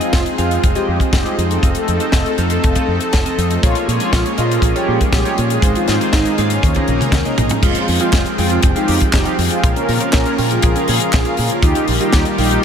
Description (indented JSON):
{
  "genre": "italo disco",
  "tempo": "120 BPM",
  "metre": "4/4",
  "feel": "straight",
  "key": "F minor",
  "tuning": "A4 = 440 Hz",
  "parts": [
    { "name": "mellow synth brass", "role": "melody", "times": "0.0-12.6 s", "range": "Ab3 to Bb4", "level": "-20 LUFS", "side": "equal", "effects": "chorus, ping-pong delay" },
    { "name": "lush unison pad", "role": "sustained chords", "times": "0.0-12.6 s", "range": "Db3 to G5", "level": "-21 LUFS", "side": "equal", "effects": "chorus" },
    { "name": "chorused polysynth", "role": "stabs", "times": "0.0-12.6 s", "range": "Ab3 to G5", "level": "-23 LUFS", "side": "right 3 dB", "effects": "analog delay" },
    { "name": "tight funk drum kit", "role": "drums", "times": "0.0-12.6 s", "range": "crash cymbal, handclaps, hi-hat, snare drum, toms", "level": "-22 LUFS", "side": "left 2 dB", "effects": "none" },
    { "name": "fingered electric bass with an envelope filter", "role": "bass", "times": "0.1-12.6 s", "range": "F1 to Bb2", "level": "-20 LUFS", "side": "equal", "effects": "none" },
    { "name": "kick drum", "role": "drums", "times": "0.1-12.2 s", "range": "none", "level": "-16 LUFS", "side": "equal", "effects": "none" }
  ],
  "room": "moderate huge ambient reverb, RT60 9.6 s",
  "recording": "dreamy mix soaked in reverb",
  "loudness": "-13 LUFS",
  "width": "side -8 dB against mid",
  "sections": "0.0-7.6 A section; 7.6-12.6 B section",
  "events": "drum fill 6.6-7.6",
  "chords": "0.0 Fm7; 1.6 F7; 3.6 Bbm7; 5.6 Ab6; 6.6 Ebsus4; 7.6 Fmadd9; 9.6 Bbm; 11.6 Ebadd9",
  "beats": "0.13 0.63 1.13 | 1.63 2.13 2.63 3.13 | 3.63 4.13 4.63 5.13 | 5.63 6.13 6.63 7.13 | 7.63 8.13 8.63 9.13 | 9.63 10.13 10.63 11.13 | 11.63 12.13 12.63"
}